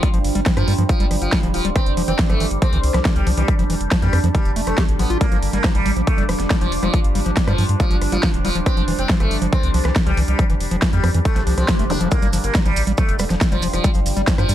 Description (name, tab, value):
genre	psychedelic trance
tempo	139 BPM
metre	4/4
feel	straight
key	unclear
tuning	A4 = 440 Hz
part	sitar	melody	0.0-14.5 s	F3 to D4	-26 LUFS	equal	phaser, sidechain pumping, ping-pong delay
part	overtone-sweeping drone	sustained chords	0.0-14.5 s	G3 to D4	-26 LUFS	right 1 dB	chorus, built-in reverb, sidechain pumping
part	overdriven acid bass	riff	0.0-14.5 s	E3 to G4	-25 LUFS	moving between left 5 dB and right 5 dB	auto-pan, sidechain pumping, dub echo
part	big-room dance drum kit	drums	0.0-14.5 s	hi-hat, rim click, snare drum	-26 LUFS	equal	overdrive
part	electronic kick drum	drums	0.0-14.4 s	none	-19 LUFS	equal	overdrive
part	sub drop, swell and zap	sound effects	0.0, 11.4-12.1 s	none	-27 LUFS	left 1 dB	none
part	round analog bass	bass	0.1-14.5 s	D1 to G2	-21 LUFS	equal	none
part	maracas	percussion	12.1-14.5 s	none	-32 LUFS	right 4 dB	none
room	digital ambience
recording	dark, warm production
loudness	-16 LUFS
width	side -12 dB against mid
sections	0.0-14.5 A section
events	swell 11.4-12.1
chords	0.0 G5; 1.8 F5; 5.2 G5; 8.7 F5; 12.1 G5